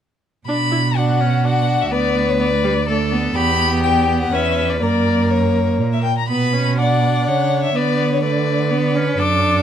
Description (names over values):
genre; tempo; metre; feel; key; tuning
quick classical-period movement for string quartet; 124 BPM; 3/4; straight; B minor; A4 = 441 Hz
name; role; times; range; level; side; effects
clear violin; melody; 0.5-9.6 s; C#5 to D6; -21 LUFS; left 6 dB; none
clear violin; second line; 0.5-9.6 s; D4 to D5; -23 LUFS; left 3 dB; none
clear viola; accompaniment; 0.5-9.6 s; G3 to E4; -22 LUFS; right 2 dB; none
rich cello; bass; 0.5-9.6 s; D2 to D3; -19 LUFS; right 4 dB; none
room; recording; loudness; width
light reverb; dark, warm production; -15 LUFS; side -9 dB against mid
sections
0.5-9.6 A section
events
none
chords
0.5 Bm; 1.9 Bm/D; 3.4 Em; 4.3 C#m7/E; 4.8 F#; 6.3 Bm; 7.8 Bm/D